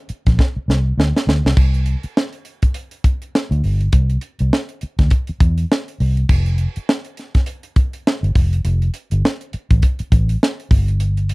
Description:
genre	lush 1970s-style soul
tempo	102 BPM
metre	4/4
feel	swing 58% on 16ths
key	unclear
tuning	A4 = 441 Hz
part	vintage muted fingered electric bass	bass	0.1-11.3 s	F1 to E2	-16 LUFS	equal	none
part	tight funk drum kit	drums	0.1-11.3 s	crash cymbal, hi-hat, kick drum, snare drum	-15 LUFS	equal	none
room	little or no reverb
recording	dry, close 1970s-style studio recording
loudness	-15 LUFS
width	side -25 dB against mid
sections	0.0-1.6 A section; 1.6-6.3 B section; 6.3-11.3 C section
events	drum fill 0.4-1.6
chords	none

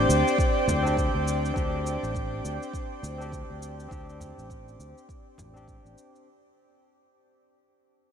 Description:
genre	organic downtempo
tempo	102 BPM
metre	4/4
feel	swing 59% on 16ths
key	unclear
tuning	A4 = 436 Hz
part	barky tine electric piano	accompaniment	0.0-6.3 s	C4 to G4	-32 LUFS	left 3 dB	overdrive, sidechain pumping, diffuse ambient delay
part	airy breathy pad	sustained chords	0.0-6.2 s	C5 to D6	-29 LUFS	right 1 dB	chorus, sidechain pumping
part	sustaining fretless electric bass	bass	0.0-5.9 s	A1 to D2	-30 LUFS	equal	none
part	bronze singing bowl	texture	0.0-6.3 s	none	barely audible	none	none
part	shaker	drums	0.1-6.2 s	none	-39 LUFS	right 1 dB	none
part	electronic kick drum	drums	0.4-5.8 s	none	-30 LUFS	equal	none
part	frame drum	percussion	0.7-5.5 s	none	-39 LUFS	left 1 dB	none
room	moderate huge ambient reverb, RT60 7.2 s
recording	dreamy mix soaked in reverb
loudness	-25 LUFS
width	side -8 dB against mid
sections	0.0-6.3 A section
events	fade-out 0.0-6.3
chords	0.0 Gsus4

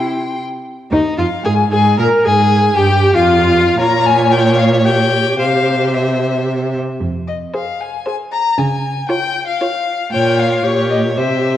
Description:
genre	quick classical-period movement for string quartet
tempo	114 BPM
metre	3/4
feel	rubato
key	F minor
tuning	A4 = 440 Hz
part	rich violin	melody	0.0-11.6 s	Db5 to C6	-18 LUFS	left 6 dB	none
part	rich violin	second line	0.0-11.6 s	Eb4 to G5	-19 LUFS	left 2 dB	none
part	warm viola	accompaniment	0.0-11.6 s	Eb4 to Bb4	-19 LUFS	right 1 dB	none
part	rich cello	bass	0.0-11.6 s	Eb2 to Db3	-17 LUFS	right 2 dB	none
room	wet scoring stage reverb, RT60 1.9 s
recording	worn, warbling old tape, cassette tape, warbly pitch drift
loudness	-12 LUFS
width	side -11 dB against mid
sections	0.7-11.6 A section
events	none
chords	0.0 C; 0.7 Fm; 2.2 Fmadd9; 3.8 Bbm; 4.8 Gdim/Bb; 5.4 C; 7.0 Fm; 8.6 Db; 10.1 Bbm; 10.6 Gdim/Bb

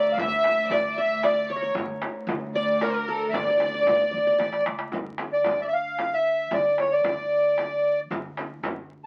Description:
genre	Arabic maqam ensemble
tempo	113 BPM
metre	3/4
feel	straight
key	unclear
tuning	A4 = 439 Hz
part	accordion	melody	0.0-8.0 s	A4 to F5	-24 LUFS	equal	light tremolo tuning
part	clear studio violin section	second line	0.0-4.7 s	Bb4 to E5	-33 LUFS	equal	none
part	qanun	second line	0.0-5.4 s	A4 to E5	-36 LUFS	equal	none
part	upright bass	bass	0.0-9.1 s	G1 to D2	-45 LUFS	equal	none
part	warm chamber cello section	drone	0.0-5.0 s	D2	-39 LUFS	equal	none
part	darbuka	percussion	0.2-9.0 s	none	-36 LUFS	equal	none
part	frame drum	percussion	0.2-8.8 s	none	-37 LUFS	equal	none
room	moderate studio reverb, RT60 0.6 s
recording	very old 78 rpm record, vinyl crackle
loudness	-25 LUFS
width	mono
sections	0.0-4.9 A section; 4.9-9.1 B section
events	drum fill 4.4-4.9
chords	none

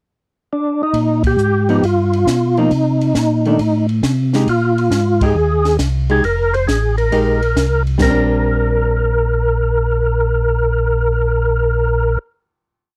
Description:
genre	soul jazz organ trio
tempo	135 BPM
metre	4/4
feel	swing 68% on 8ths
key	Bb mixolydian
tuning	A4 = 440 Hz
part	percussive tonewheel organ	melody	0.5-12.2 s	D4 to C5	-19 LUFS	equal	slow rotary speaker, overdrive, chorus vibrato
part	mellow tonewheel organ	bass	0.9-12.2 s	F1 to C3	-19 LUFS	equal	chorus vibrato, slow rotary speaker
part	compact cocktail drum kit	drums	0.9-8.2 s	crash cymbal, hi-hat, kick drum, ride cymbal, snare drum	-25 LUFS	equal	none
part	hollow-body jazz guitar	accompaniment	1.7-12.3 s	Eb3 to G4	-20 LUFS	equal	none
room	little or no reverb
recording	dry, close 1970s-style studio recording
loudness	-16 LUFS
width	mono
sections	0.0-0.9 pickup bar; 0.9-8.0 A section; 8.0-11.6 final chord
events	band accent 1.2, 5.1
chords	0.0 N.C.; 0.9 Bb7sus4; 1.8 G7alt; 2.7 Cm9; 3.6 Am7b5; 4.5 Bb13sus4; 8.0 Bb69

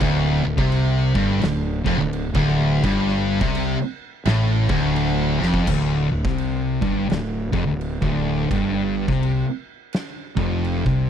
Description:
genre	stoner and doom metal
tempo	85 BPM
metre	4/4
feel	swing 62% on 8ths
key	D minor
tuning	A4 = 439 Hz
part	heavy high-gain guitar	riff	0.0-5.7 s	D2 to C3	-26 LUFS	equal	distortion
part	thick fuzz guitar	riff	0.0-11.1 s	D2 to C3	-23 LUFS	left 8 dB	distortion
part	thick fuzz guitar	riff	0.0-11.1 s	D2 to C3	-24 LUFS	right 9 dB	distortion
part	fuzz fingered electric bass	bass	0.0-11.1 s	D1 to C2	-26 LUFS	equal	overdrive
part	oversized low-tuned drum kit	drums	0.0-11.1 s	crash cymbal, kick drum, snare drum	-27 LUFS	equal	none
room	little or no reverb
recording	dry, close 1970s-style studio recording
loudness	-19 LUFS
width	side -9 dB against mid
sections	0.0-5.7 A section; 5.7-11.1 B section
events	drum fill 5.3-5.7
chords	0.0 Dm

